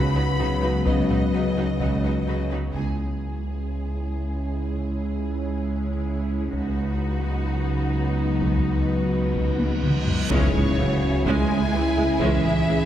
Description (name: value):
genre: cinematic, hybrid orchestral and electronic film score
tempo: 127 BPM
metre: 4/4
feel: straight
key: C# minor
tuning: A4 = 440 Hz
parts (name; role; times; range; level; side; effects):
- rich symphonic violin section; melody; 0.0-12.9 s; B4 to B5; -33 LUFS; left 2 dB; low-pass filter
- evolving wavetable pad; sustained chords; 0.0-12.9 s; F#3 to B4; -29 LUFS; left 1 dB; chorus, built-in reverb, low-pass filter
- mellow French horn section; sustained chords; 0.0-2.5, 10.3-12.9 s; F#3 to G#4; -29 LUFS; left 2 dB; low-pass filter
- clear symphonic double bass section; bass; 0.0-12.8 s; C#2; -30 LUFS; right 1 dB; none
- rich symphonic cello section; bass; 0.0-12.9 s; C#2 to G#3; -28 LUFS; right 2 dB; none
- warm sub bass; bass; 0.0-12.9 s; C#2; -28 LUFS; equal; none
- clear symphonic viola section; accompaniment; 0.1-12.8 s; E3 to E4; -32 LUFS; right 2 dB; low-pass filter
- rich symphonic violin section; second line; 0.2-12.9 s; E4 to B4; -34 LUFS; left 1 dB; none
- taiko ensemble; drums; 0.9-3.7, 6.5-12.7 s; none; -28 LUFS; equal; none
- reverse cymbal and impact; sound effects; 9.2-12.2 s; none; -34 LUFS; equal; none
- mellow tuba; bass; 10.3-12.8 s; C#2; -30 LUFS; right 1 dB; none
room: wet scoring stage reverb, RT60 2.0 s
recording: heard from further back in the room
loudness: -21 LUFS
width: side -11 dB against mid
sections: 0.0-2.8 A section; 2.8-10.3 B section; 10.3-12.9 C section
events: band accent 2.8-3.2; filter sweep 2.8-10.3; reverse cymbal 9.2-10.3; drum fill 9.6-10.3; impact 10.3-12.2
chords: 0.0 B/C#; 2.8 C#m; 6.5 B/C#; 10.3 C#m